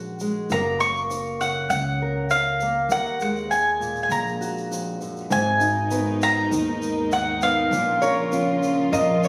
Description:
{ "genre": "acoustic folk duo or small band", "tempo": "100 BPM", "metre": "4/4", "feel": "straight", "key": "unclear", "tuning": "A4 = 441 Hz", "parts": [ { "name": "mandolin", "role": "melody", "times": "0.0-8.6 s", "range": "F5 to Db6", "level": "-25 LUFS", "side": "equal", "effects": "none" }, { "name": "fingerpicked steel-string acoustic guitar", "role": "accompaniment", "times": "0.0-9.3 s", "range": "Eb2 to Bb4", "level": "-28 LUFS", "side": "equal", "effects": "none" }, { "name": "upright bass", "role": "bass", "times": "0.0-9.3 s", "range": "Gb1 to F2", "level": "-33 LUFS", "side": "equal", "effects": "none" }, { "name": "egg shaker", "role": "percussion", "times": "0.2-9.3 s", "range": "none", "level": "-42 LUFS", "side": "equal", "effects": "none" }, { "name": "warm chamber string section", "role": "sustained chords", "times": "5.3-9.3 s", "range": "Cb3 to Bb4", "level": "-33 LUFS", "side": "equal", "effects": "none" }, { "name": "lap resonator guitar", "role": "second line", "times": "8.0-9.3 s", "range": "Db5 to Eb5", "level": "-26 LUFS", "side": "equal", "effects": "none" } ], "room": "moderate recital hall reverb, RT60 1.7 s", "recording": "recorded on a phone in the room, studio reverb, compression", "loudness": "-23 LUFS", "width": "mono", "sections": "0.0-5.3 A section; 5.3-9.3 B section", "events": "none", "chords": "0.5 Gbmaj7; 2.9 Ebmadd9; 5.3 Abmadd9; 7.7 Bbm" }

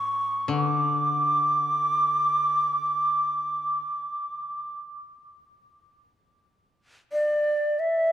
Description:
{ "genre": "japanese traditional, Japanese chamber music", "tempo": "free time", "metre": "none", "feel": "none", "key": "unclear", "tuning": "A4 = 441 Hz", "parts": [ { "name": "mellow shakuhachi", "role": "melody", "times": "0.0-8.1 s", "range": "D5 to D6", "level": "-23 LUFS", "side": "right 1 dB", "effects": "none" }, { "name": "koto", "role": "accompaniment", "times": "0.0-3.8 s", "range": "A2 to D3", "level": "-32 LUFS", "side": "left 6 dB", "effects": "none" } ], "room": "wet church reverb, RT60 3.3 s", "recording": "dark, warm production", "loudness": "-22 LUFS", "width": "side -11 dB against mid", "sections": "0.0-8.1 A section", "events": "slowing down 4.9-8.1", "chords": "none" }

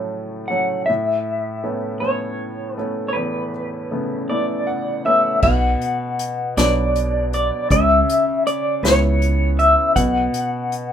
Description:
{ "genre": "acoustic folk-pop ballad", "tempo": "53 BPM (dotted quarters)", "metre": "6/8", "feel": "straight", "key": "B minor", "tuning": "A4 = 440 Hz", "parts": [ { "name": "electric guitar through a small old amp", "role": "melody", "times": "0.0-10.9 s", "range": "B4 to A5", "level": "-19 LUFS", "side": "left 1 dB", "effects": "tremolo" }, { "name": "clear upright piano", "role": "accompaniment", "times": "0.0-10.9 s", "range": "E2 to F#5", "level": "-24 LUFS", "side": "equal", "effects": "none" }, { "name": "upright bass", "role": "bass", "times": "5.4-10.3 s", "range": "B1 to C#2", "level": "-20 LUFS", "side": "right 1 dB", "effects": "none" }, { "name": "unplugged drum kit", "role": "drums", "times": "5.4-10.9 s", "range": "crash cymbal, hi-hat, kick drum, snare drum", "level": "-24 LUFS", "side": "left 1 dB", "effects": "none" } ], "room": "light reverb", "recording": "minimal, uncompressed stereo recording", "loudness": "-17 LUFS", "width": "side -9 dB against mid", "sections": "0.0-5.4 A section; 5.4-10.9 B section", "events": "none", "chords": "0.0 F#m/A; 0.9 Aadd9; 5.4 Bm; 7.7 C#m7; 10.0 B5" }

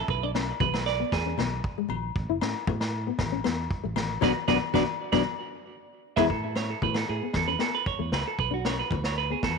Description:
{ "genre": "highlife guitar band", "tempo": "116 BPM", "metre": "4/4", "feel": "straight", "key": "A major", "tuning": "A4 = 439 Hz", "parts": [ { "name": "clean electric guitar", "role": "arpeggios", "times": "0.0-9.6 s", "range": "F#4 to E5", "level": "-29 LUFS", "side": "right 15 dB", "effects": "tape echo" }, { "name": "fingered electric bass", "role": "bass", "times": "0.1-9.6 s", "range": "F#1 to A2", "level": "-32 LUFS", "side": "right 1 dB", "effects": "none" }, { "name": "vintage drum kit", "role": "drums", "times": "0.1-9.6 s", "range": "kick drum, snare drum", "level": "-32 LUFS", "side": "right 1 dB", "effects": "none" }, { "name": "congas", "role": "percussion", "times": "0.1-9.6 s", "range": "none", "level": "-34 LUFS", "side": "left 10 dB", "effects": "none" }, { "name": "nylon-string guitar", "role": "accompaniment", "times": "0.2-9.5 s", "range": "F#3 to E4", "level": "-30 LUFS", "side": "left 14 dB", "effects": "none" }, { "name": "agogo bells", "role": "percussion", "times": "0.4-9.6 s", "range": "none", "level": "-35 LUFS", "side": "left 15 dB", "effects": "none" } ], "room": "light reverb, small room ambience", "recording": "1960s-style stereo with parts hard left and right", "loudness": "-25 LUFS", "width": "side -4 dB against mid", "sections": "0.0-6.3 A section; 6.3-9.6 B section", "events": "clean electric guitar solo 0.0-6.3; band accent 4.2-6.3; drum fill 5.8-6.3", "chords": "0.1 Bm; 1.1 E; 2.2 A5; 4.2 Bm; 5.3 E; 6.3 Amaj7; 7.3 Esus4; 8.4 Bm" }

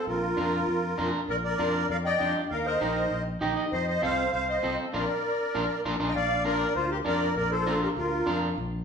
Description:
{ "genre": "latin", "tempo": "198 BPM", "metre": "4/4", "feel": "straight", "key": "Bb major", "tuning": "A4 = 438 Hz", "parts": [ { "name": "musette accordion", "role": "melody", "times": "0.0-8.4 s", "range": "F4 to G5", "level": "-29 LUFS", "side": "right 1 dB", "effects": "none" }, { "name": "fingered electric bass", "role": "bass", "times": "0.1-8.8 s", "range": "Bb1 to F2", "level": "-33 LUFS", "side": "left 1 dB", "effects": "none" }, { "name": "electric guitar at the edge of break-up", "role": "accompaniment", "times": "0.4-8.5 s", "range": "C4 to G5", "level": "-31 LUFS", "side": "equal", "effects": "none" }, { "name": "breathy clarinet", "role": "second line", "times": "1.3-8.4 s", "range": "F4 to Eb5", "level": "-31 LUFS", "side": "left 4 dB", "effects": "none" } ], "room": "wet large studio reverb, RT60 1.2 s", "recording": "band playing live in one room, nothing above 10.7 kHz", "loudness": "-25 LUFS", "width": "side -6 dB against mid", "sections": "0.0-6.2 A section; 6.2-8.8 B section", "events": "clean electric guitar fill 3.3-3.7; band accent 4.9-6.2", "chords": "0.1 Bb; 2.5 Eb; 3.7 F7; 4.9 Bb" }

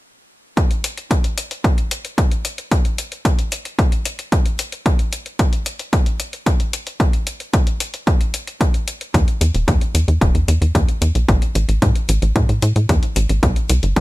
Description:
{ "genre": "italo disco", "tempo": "112 BPM", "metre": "4/4", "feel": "straight", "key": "A minor", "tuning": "A4 = 439 Hz", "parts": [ { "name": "electronic hi-hat", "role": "drums", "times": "0.6-14.0 s", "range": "none", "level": "-26 LUFS", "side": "left 3 dB", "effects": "studio reverb" }, { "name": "electronic kick drum", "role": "drums", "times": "0.6-14.0 s", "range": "none", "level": "-16 LUFS", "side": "equal", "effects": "studio reverb" }, { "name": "tight sequencer bass", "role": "bass", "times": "9.1-14.0 s", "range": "E1 to A2", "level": "-16 LUFS", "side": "equal", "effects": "none" } ], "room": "little or no reverb", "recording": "none", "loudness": "-16 LUFS", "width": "side -19 dB against mid", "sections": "0.6-14.0 A section", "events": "none", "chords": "none" }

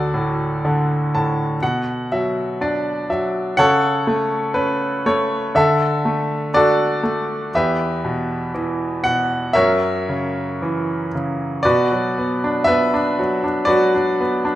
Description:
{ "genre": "classical, lyrical solo piano", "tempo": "60 BPM", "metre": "4/4", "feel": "rubato", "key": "unclear", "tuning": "A4 = 441 Hz", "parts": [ { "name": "bright grand piano", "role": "solo", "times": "0.0-14.6 s", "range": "D2 to A5", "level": "-17 LUFS", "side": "equal", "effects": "none" } ], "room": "moderate recital hall reverb, RT60 1.5 s", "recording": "minimal, uncompressed stereo recording", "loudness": "-17 LUFS", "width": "side -14 dB against mid", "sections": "0.0-11.6 A section; 11.6-14.6 B section", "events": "grand piano fill 0.6-3.6", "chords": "0.0 D; 1.6 Bm; 3.6 F#m/C#; 5.6 Dadd9; 7.5 Em; 9.5 F#7; 11.6 Bm" }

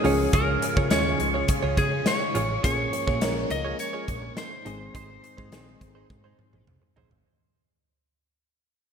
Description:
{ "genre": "1980s-style pop", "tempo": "104 BPM", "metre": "4/4", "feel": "straight", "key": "unclear", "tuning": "A4 = 440 Hz", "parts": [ { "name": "lightly driven lead guitar", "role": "melody", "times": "0.0-6.6 s", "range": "Ab4 to Eb5", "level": "-29 LUFS", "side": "equal", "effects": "wide subtle chorus, digital delay" }, { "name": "soft electric-piano-like synth keys", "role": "accompaniment", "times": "0.0-7.3 s", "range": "Eb3 to Bb4", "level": "-31 LUFS", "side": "left 3 dB", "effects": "chorus" }, { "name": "phased string machine", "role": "sustained chords", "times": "0.0-7.2 s", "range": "Db3 to Ab4", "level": "-34 LUFS", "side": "right 1 dB", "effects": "ensemble chorus, phaser" }, { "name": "direct-recorded clean electric guitar", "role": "riff", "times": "0.0-7.1 s", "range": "Eb4 to Db5", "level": "-32 LUFS", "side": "right 7 dB", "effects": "wide subtle chorus, digital delay" }, { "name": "hollow-body short-scale picked electric bass", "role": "bass", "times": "0.0-7.2 s", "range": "Ab1 to Db3", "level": "-30 LUFS", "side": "equal", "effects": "none" }, { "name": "big rock drum kit", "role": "drums", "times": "0.0-7.2 s", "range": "hi-hat, kick drum, snare drum, toms", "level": "-28 LUFS", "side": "equal", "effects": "gated reverb" } ], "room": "moderate lush hall reverb, RT60 2.4 s", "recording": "bright 1980s-style digital production", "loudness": "-22 LUFS", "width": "side -7 dB against mid", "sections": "0.0-7.3 A section", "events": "fade-out 0.0-7.3; drum fill 6.1-7.3", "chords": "0.0 Db; 2.6 Bbm7; 4.7 Ab" }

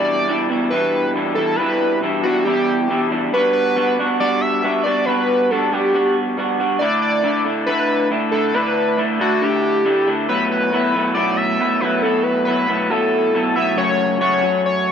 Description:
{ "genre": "rock", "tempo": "138 BPM", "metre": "4/4", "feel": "straight", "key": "unclear", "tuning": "A4 = 440 Hz", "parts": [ { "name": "overdriven synth lead", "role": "melody", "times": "0.0-14.9 s", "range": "F#4 to E5", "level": "-19 LUFS", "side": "equal", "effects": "distortion, chorus, plate reverb, digital delay" }, { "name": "electric guitar through a small old amp", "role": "riff", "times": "0.0-14.9 s", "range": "E2 to F#4", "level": "-18 LUFS", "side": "equal", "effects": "wide subtle chorus" } ], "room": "moderate studio reverb, RT60 0.7 s", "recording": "nothing above 10.6 kHz", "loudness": "-16 LUFS", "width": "side -8 dB against mid", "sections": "0.0-13.8 A section; 13.8-14.9 B section", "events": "none", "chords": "0.0 Em7; 3.3 Gmaj7; 6.8 Dsus2; 10.3 B7sus4; 13.8 F#m" }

